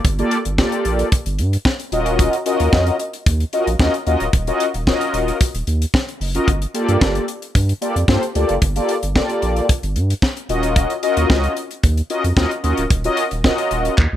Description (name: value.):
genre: early-eighties boogie funk.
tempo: 112 BPM.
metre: 4/4.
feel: straight.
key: unclear.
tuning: A4 = 440 Hz.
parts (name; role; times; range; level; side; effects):
saturated sub bass; bass; 0.0-14.2 s; D1 to G2; -20 LUFS; equal; none.
tight funk drum kit; drums; 0.0-14.1 s; handclaps, hi-hat, kick drum, snare drum; -18 LUFS; equal; none.
mellow synth brass; accompaniment; 0.2-13.9 s; Bb3 to Eb5; -19 LUFS; left 1 dB; chorus, phaser.
room: studio reverb.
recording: none.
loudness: -16 LUFS.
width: side -12 dB against mid.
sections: 0.0-14.2 A section.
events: drum fill 14.0.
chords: 0.0 Gm9; 1.9 Ebm9; 6.5 Gm9; 10.5 Ebm9.